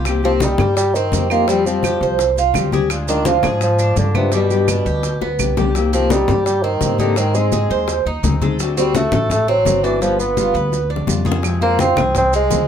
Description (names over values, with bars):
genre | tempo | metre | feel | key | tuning
latin, Cuban son and guajira | 169 BPM | 4/4 | straight | C minor | A4 = 440 Hz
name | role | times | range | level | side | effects
nylon-string guitar | accompaniment | 0.0-12.7 s | B2 to Ab4 | -22 LUFS | left 6 dB | none
Cuban tres | arpeggios | 0.0-12.7 s | G3 to C5 | -23 LUFS | right 8 dB | none
upright bass | bass | 0.0-12.7 s | G1 to Ab2 | -21 LUFS | equal | none
bongos | percussion | 0.1-12.7 s | none | -28 LUFS | left 6 dB | none
claves | percussion | 0.1-5.6, 11.4-12.2 s | none | -27 LUFS | right 7 dB | none
congas | percussion | 0.1-12.7 s | none | -23 LUFS | left 3 dB | none
maracas | percussion | 0.1-12.7 s | none | -30 LUFS | right 8 dB | none
mellow bassoon | melody | 0.2-12.7 s | B2 to C4 | -18 LUFS | right 1 dB | none
room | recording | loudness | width
moderate small room reverb, RT60 0.5 s | none | -14 LUFS | side -8 dB against mid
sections
0.0-5.7 A section; 5.7-12.7 A section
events
drum fill 5.2-5.7, 10.7-11.4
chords
0.1 Cm7; 1.5 Fsus2; 2.9 Ddim; 4.3 G; 5.7 Cm7; 7.2 Ab; 8.6 D7; 10.0 G7; 11.4 Fm